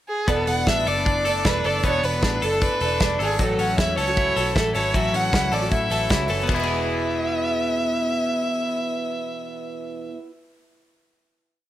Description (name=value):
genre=jangly indie pop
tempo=155 BPM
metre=4/4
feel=straight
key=E mixolydian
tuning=A4 = 440 Hz
part: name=rich violin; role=melody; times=0.1-10.1 s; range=G#4 to F#5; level=-24 LUFS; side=equal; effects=slapback echo
part: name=picked twelve-string acoustic guitar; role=accompaniment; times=0.3-10.3 s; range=E2 to F#4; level=-28 LUFS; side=right 5 dB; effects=none
part: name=twelve-string electric guitar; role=arpeggios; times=0.3-10.3 s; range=F#3 to A4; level=-27 LUFS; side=left 5 dB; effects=tube saturation, slapback echo
part: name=vintage muted picked electric bass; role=bass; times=0.3-10.1 s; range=E1 to A2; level=-29 LUFS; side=equal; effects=none
part: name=loose indie drum kit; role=drums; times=0.3-6.6 s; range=crash cymbal, hi-hat, kick drum, snare drum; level=-25 LUFS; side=equal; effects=none
room=light reverb, small room ambience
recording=none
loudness=-20 LUFS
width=side -12 dB against mid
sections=0.0-0.3 pickup bar; 0.3-6.5 verse; 6.5-9.6 final chord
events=none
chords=0.3 E7sus4; 3.4 A6; 6.5 E